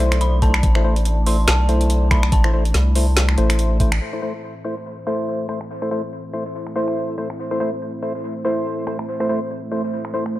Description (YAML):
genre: deep dubstep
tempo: 142 BPM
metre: 4/4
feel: swing 57% on 16ths, half-time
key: A minor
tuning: A4 = 441 Hz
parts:
  - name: dark analog pad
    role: sustained chords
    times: 0.0-10.4 s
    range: A3 to D5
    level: -29 LUFS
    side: right 2 dB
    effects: chorus
  - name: percussive organ stab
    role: stabs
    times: 0.0-10.2 s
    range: A3 to C5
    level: -24 LUFS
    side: left 1 dB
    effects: analog chorus, cassette tape, dub echo
  - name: soft dub sub bass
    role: bass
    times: 0.0-4.0 s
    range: A1 to C2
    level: -17 LUFS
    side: equal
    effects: none
  - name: garage drum kit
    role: drums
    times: 0.0-10.3 s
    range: finger snaps, hi-hat, snare drum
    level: -23 LUFS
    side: equal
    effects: overdrive, low-pass filter on hats, studio reverb, low-pass filter on snare
  - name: dark detuned synth bell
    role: melody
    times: 0.2-3.5 s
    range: A5 to C6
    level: -29 LUFS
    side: equal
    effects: chorus, dub echo
  - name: electronic kick drum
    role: drums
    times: 0.4-3.9 s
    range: none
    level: -18 LUFS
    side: equal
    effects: overdrive, studio reverb
room: light reverb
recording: dry, gritty hardware recording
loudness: -18 LUFS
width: side -15 dB against mid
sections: 0.0-4.0 A section; 4.0-10.4 B section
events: band accent 3.9; filter sweep on synth stab 4.0-10.4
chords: 0.0 Am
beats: 0.21 | 0.63 1.05 1.48 1.90 | 2.32 2.74 3.17 3.59 | 4.01 4.43 4.86 5.28 | 5.70 6.12 6.55 6.97 | 7.39 7.81 8.24 8.66 | 9.08 9.50 9.93 10.35